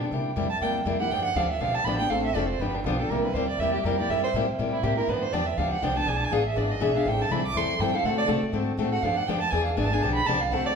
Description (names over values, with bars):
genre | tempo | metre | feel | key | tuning
acoustic string swing (jazz manouche) | 242 BPM | 4/4 | swing 56% on 8ths | G mixolydian | A4 = 439 Hz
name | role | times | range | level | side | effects
picked steel-string acoustic guitar | accompaniment | 0.0-10.7 s | C3 to A4 | -26 LUFS | left 3 dB | none
upright bass | bass | 0.0-10.7 s | F1 to D3 | -31 LUFS | equal | none
dark violin | second line | 0.5-10.7 s | D4 to D6 | -27 LUFS | right 4 dB | none
room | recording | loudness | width
wet large studio reverb, RT60 1.2 s | band playing live in one room | -23 LUFS | side -6 dB against mid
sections
0.0-10.8 A section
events
violin solo 0.0-10.8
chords
0.1 C7; 1.1 G7; 2.1 Dm7; 2.6 G7; 3.1 C7; 5.1 G7; 6.1 E7; 7.1 Am7; 8.0 D7; 9.0 G7; 9.5 E7; 10.0 G7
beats
| 0.12 0.36 0.61 0.86 | 1.11 1.36 1.61 1.85 | 2.10 2.35 2.60 2.85 | 3.10 3.34 3.59 3.84 | 4.09 4.34 4.58 4.83 | 5.08 5.33 5.57 5.82 | 6.07 6.32 6.56 6.81 | 7.06 7.30 7.55 7.80 | 8.05 8.29 8.54 8.79 | 9.03 9.28 9.53 9.77 | 10.02 10.27 10.51